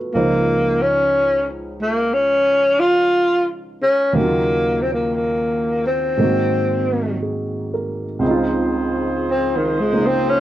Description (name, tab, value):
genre	jazz ballad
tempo	59 BPM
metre	4/4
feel	swing 68% on 8ths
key	Db major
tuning	A4 = 440 Hz
part	warm upright piano	accompaniment	0.0-10.4 s	Db2 to C5	-22 LUFS	right 1 dB	none
part	breathy tenor saxophone	melody	0.1-10.4 s	Eb3 to F4	-17 LUFS	left 1 dB	none
part	mellow saxophone section	sustained chords	8.2-10.4 s	F3 to C5	-24 LUFS	right 1 dB	none
room	light reverb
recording	worn, warbling old tape, cassette tape, warbly pitch drift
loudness	-16 LUFS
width	side -13 dB against mid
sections	0.0-8.2 A section; 8.2-10.4 B section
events	tenor saxophone solo 8.2-10.4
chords	0.1 Dbmaj9; 4.2 Ebm7; 6.2 Ab9; 8.2 Dbmaj9